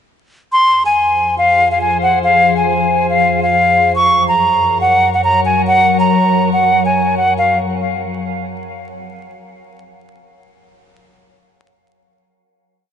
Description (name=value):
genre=hip hop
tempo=140 BPM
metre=4/4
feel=half-time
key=F phrygian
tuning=A4 = 440 Hz
part: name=hollow concert flute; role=melody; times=0.5-7.6 s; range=F5 to Db6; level=-12 LUFS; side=equal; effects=ping-pong delay
part: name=glassy FM pad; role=sustained chords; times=1.1-7.6 s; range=F2 to Db5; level=-18 LUFS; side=left 1 dB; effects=ensemble chorus, built-in reverb
room=light reverb, studio reverb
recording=vinyl crackle, nothing above 10.8 kHz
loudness=-11 LUFS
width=side -8 dB against mid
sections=0.5-7.4 hook; 7.4-9.1 final chord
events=none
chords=0.5 Fm; 4.0 Gb; 7.4 Fm